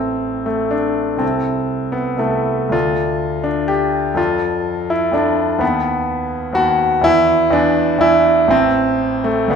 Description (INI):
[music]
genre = classical, romantic character piece for solo piano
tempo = 123 BPM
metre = 3/4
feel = uneven beats, rubato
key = A minor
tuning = A4 = 442 Hz
[part]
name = clear concert grand piano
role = solo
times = 0.0-9.6 s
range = A1 to B5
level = -14 LUFS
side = equal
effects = none
[sound]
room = wet recital hall reverb, RT60 1.6 s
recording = recorded in a church or concert hall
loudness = -14 LUFS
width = side -6 dB against mid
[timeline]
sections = 0.0-9.6 A section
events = none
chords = 0.0 Am; 1.2 Am/C; 2.7 Dm; 4.2 Dm/F; 5.6 B7/D#; 7.1 E7; 8.5 Am